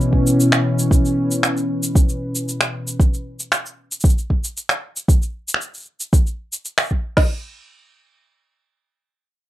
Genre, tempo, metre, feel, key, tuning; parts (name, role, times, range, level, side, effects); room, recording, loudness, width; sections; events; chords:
folktronica; 115 BPM; 4/4; straight; A4 = 441 Hz
warm analog pad; sustained chords; 0.0-3.0 s; B2 to B4; -19 LUFS; equal; chorus
electronic cabasa and finger snaps; drums; 0.0-6.9 s; -21 LUFS; equal
organic electronic drum kit; drums; 0.1-7.3 s; crash cymbal, kick drum, snare drum; -16 LUFS; equal
light reverb; dark, warm production; -17 LUFS; side -14 dB against mid
0.0-7.2 A section; 7.2-9.5 B section
0.0 C#m7/B; 3.0 N.C.